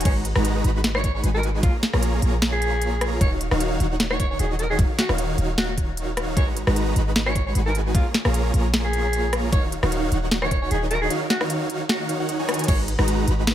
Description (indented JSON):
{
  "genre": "future bass",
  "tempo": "152 BPM",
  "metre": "4/4",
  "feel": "swing 54% on 16ths, half-time",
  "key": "Eb minor",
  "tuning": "A4 = 439 Hz",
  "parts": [
    { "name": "supersaw chords", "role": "riff", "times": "0.0-13.5 s", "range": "Eb3 to Cb6", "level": "-26 LUFS", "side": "right 1 dB", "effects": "sidechain pumping" },
    { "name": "warm 808-style bass", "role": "bass", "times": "0.0-13.5 s", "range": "Eb1 to Bb1", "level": "-24 LUFS", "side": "equal", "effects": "sidechain pumping" },
    { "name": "trap drum kit", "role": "drums", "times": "0.0-13.5 s", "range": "crash cymbal, hi-hat, rim click, snare drum", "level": "-24 LUFS", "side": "left 1 dB", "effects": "overdrive" },
    { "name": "growling alto saxophone", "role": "melody", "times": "0.1-12.8 s", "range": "F4 to Db5", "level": "-28 LUFS", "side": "equal", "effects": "sidechain pumping, ping-pong delay" },
    { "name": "electronic kick drum", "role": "drums", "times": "0.1-12.8 s", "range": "none", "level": "-21 LUFS", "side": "equal", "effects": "overdrive" }
  ],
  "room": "light reverb",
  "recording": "none",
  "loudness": "-20 LUFS",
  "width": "side -11 dB against mid",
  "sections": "0.0-12.7 A section",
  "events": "drop 0.0-12.7; drum fill 12.5; band accent 12.5",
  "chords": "0.1 Abm7; 1.6 Bbm7; 3.2 Ebm7; 6.4 Abm7; 7.9 Bbm7; 9.5 Ebm7; 12.7 Abm7",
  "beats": "| 0.05 0.45 0.84 1.24 | 1.63 2.03 2.42 2.81 | 3.21 3.60 4.00 4.39 | 4.79 5.18 5.58 5.97 | 6.37 6.76 7.16 7.55 | 7.95 8.34 8.74 9.13 | 9.53 9.92 10.31 10.71 | 11.11 11.50 11.89 12.29 | 12.68 13.08 13.47"
}